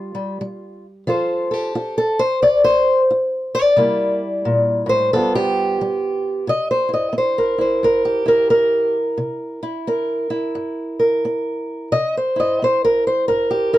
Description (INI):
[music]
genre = acoustic country blues, solo or duo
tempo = 89 BPM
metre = 4/4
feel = swing 62% on 8ths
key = C mixolydian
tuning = A4 = 438 Hz
[part]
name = fingerpicked old ladder-braced acoustic guitar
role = solo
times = 0.0-13.8 s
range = G2 to Eb5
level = -16 LUFS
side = equal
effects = none
[sound]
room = light reverb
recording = none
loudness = -16 LUFS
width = side -15 dB against mid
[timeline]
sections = 0.0-6.5 A section; 6.5-13.8 B section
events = steel-string acoustic guitar solo 0.0-6.5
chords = 0.0 G7(no3); 1.1 F; 3.8 C7; 5.1 G7; 6.5 C7